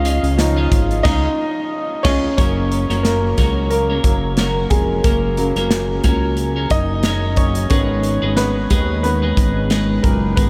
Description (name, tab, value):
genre	piano-driven pop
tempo	90 BPM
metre	4/4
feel	swing 56% on 16ths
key	F# major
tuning	A4 = 439 Hz
part	clear upright piano	accompaniment	0.0-10.5 s	A#2 to E#5	-23 LUFS	equal	none
part	twelve-string electric guitar	riff	0.0-10.5 s	F#2 to D#5	-25 LUFS	equal	subtle chorus
part	chorused synth bass	bass	0.0-10.5 s	E#1 to D#2	-23 LUFS	equal	none
part	modern studio drum kit	drums	0.1-10.5 s	crash cymbal, hi-hat, kick drum, snare drum	-22 LUFS	equal	none
room	moderate huge ambient reverb, RT60 8.2 s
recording	dreamy mix soaked in reverb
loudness	-17 LUFS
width	mono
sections	0.0-2.4 A section; 2.4-10.5 B section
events	upright piano solo 0.0-2.4, 2.4-10.5; band accent 1.0-2.4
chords	0.0 C#add9; 2.4 F#; 7.7 G#m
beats	0.38 1.04 1.71 | 2.38 3.04 3.71 4.37 | 5.04 5.71 6.37 7.04 | 7.71 8.37 9.04 9.71 | 10.37